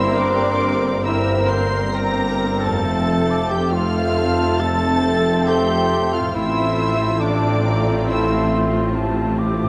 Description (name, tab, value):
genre	classical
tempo	68 BPM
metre	4/4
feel	rubato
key	F major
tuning	A4 = 440 Hz
part	warm symphonic violin section	melody	0.0-8.5 s	D6 to C7	-32 LUFS	equal	none
part	mellow clarinet	second line	0.0-8.5 s	D4 to C5	-30 LUFS	equal	none
part	mellow cor anglais	second line	0.0-8.5 s	D4 to C5	-30 LUFS	equal	none
part	silver concert flute	second line	0.0-9.7 s	G5 to D6	-29 LUFS	equal	none
part	warm symphonic violin section	second line	0.0-8.5 s	D5 to C6	-32 LUFS	equal	none
part	rich symphonic viola section	accompaniment	0.0-9.7 s	C4 to Bb4	-28 LUFS	equal	none
part	clear trombone section	sustained chords	0.0-9.7 s	F3 to Bb3	-30 LUFS	equal	none
part	warm French horn section	sustained chords	0.0-9.6 s	C4 to C5	-29 LUFS	equal	none
part	concert harp	arpeggios	0.0-9.7 s	F2 to C5	-36 LUFS	equal	none
part	mellow tuba	bass	0.0-9.7 s	F1 to A1	-28 LUFS	equal	none
part	rich symphonic cello section	bass	0.0-9.7 s	F2 to A2	-29 LUFS	equal	none
part	rich symphonic double bass section	bass	0.0-9.7 s	F1 to A1	-28 LUFS	equal	none
room	wet concert hall reverb, RT60 1.9 s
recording	dark, warm production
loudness	-19 LUFS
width	mono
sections	0.0-9.7 A section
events	none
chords	0.0 C7/G; 2.8 F; 6.4 F/A